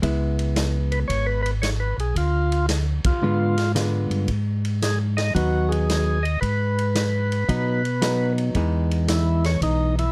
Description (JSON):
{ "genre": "soul jazz organ trio", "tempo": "113 BPM", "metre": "4/4", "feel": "swing 67% on 8ths", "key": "G# minor", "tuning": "A4 = 439 Hz", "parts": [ { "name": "hollow-body jazz guitar", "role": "accompaniment", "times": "0.0-10.0 s", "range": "D3 to F4", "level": "-28 LUFS", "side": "equal", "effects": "none" }, { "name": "mellow tonewheel organ", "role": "bass", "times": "0.0-10.1 s", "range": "G#1 to B2", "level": "-25 LUFS", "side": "equal", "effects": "slow rotary speaker" }, { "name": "vintage drum kit", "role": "drums", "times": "0.0-10.1 s", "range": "hi-hat, kick drum, ride cymbal, snare drum", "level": "-31 LUFS", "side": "equal", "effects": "none" }, { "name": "percussive tonewheel organ", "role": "melody", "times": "0.9-10.1 s", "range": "D#4 to D#5", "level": "-28 LUFS", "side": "equal", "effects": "slow rotary speaker, overdrive" } ], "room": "little or no reverb", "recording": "close, detailed microphones", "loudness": "-22 LUFS", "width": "mono", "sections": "0.0-10.1 A section", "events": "band accent 3.0", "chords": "0.0 C#m7; 2.2 Ddim7; 4.3 G#m7; 8.5 Emaj7" }